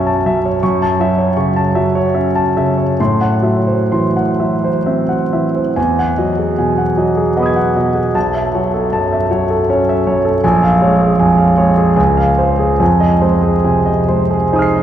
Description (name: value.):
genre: classical, impressionist solo piano.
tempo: 62-81 BPM.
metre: 3/4.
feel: rubato.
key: unclear.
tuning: A4 = 440 Hz.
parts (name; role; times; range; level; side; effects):
warm concert grand piano; solo; 0.0-14.8 s; Bb1 to C7; -12 LUFS; equal; none.
room: wet cathedral reverb, RT60 6.1 s.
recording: recorded in a church or concert hall, vinyl crackle.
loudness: -12 LUFS.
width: side -10 dB against mid.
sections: 0.0-14.8 A section.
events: none.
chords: 0.0 B9sus4; 0.6 F#m7; 3.0 Am6; 5.8 Emaj9; 8.2 B9sus4; 10.4 Bbm7; 12.0 Dbmaj7; 12.8 Fm7.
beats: | 0.61 1.35 2.13 | 2.99 3.91 4.87 | 5.77 6.59 7.37 | 8.15 8.92 9.68 | 10.43 11.18 11.98 | 12.80 13.64 14.52.